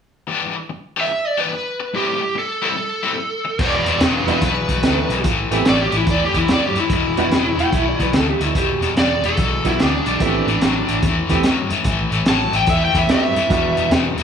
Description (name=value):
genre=electric blues shuffle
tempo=145 BPM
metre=4/4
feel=swing 66% on 8ths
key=E minor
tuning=A4 = 440 Hz
part: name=cranked stack guitar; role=riff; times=0.3-14.2 s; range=E2 to G4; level=-21 LUFS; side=left 6 dB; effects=overdrive, harmonic tremolo
part: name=lead guitar through a small cranked amp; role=melody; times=1.0-13.9 s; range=D4 to A5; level=-20 LUFS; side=right 1 dB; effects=overdrive, slapback echo
part: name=vintage muted fingered electric bass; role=bass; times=3.6-14.2 s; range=E1 to G2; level=-23 LUFS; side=equal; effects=none
part: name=crunchy breakbeat drum kit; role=drums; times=3.6-14.2 s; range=crash cymbal, hi-hat, kick drum, snare drum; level=-21 LUFS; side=right 1 dB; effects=none
part: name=bright upright piano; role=accompaniment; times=4.3-14.1 s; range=G3 to A4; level=-22 LUFS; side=right 7 dB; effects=none
part: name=electric slide guitar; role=second line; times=7.6-8.9 s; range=E4 to G5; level=-23 LUFS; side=right 4 dB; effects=none
room=light reverb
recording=studio reverb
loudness=-16 LUFS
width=side -7 dB against mid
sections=0.3-3.6 A section; 3.6-14.2 B section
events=none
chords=0.3 Em7; 1.9 Am7; 3.6 Em7; 5.3 A7(no3); 6.9 E7(no3); 10.2 Am7; 13.5 Em7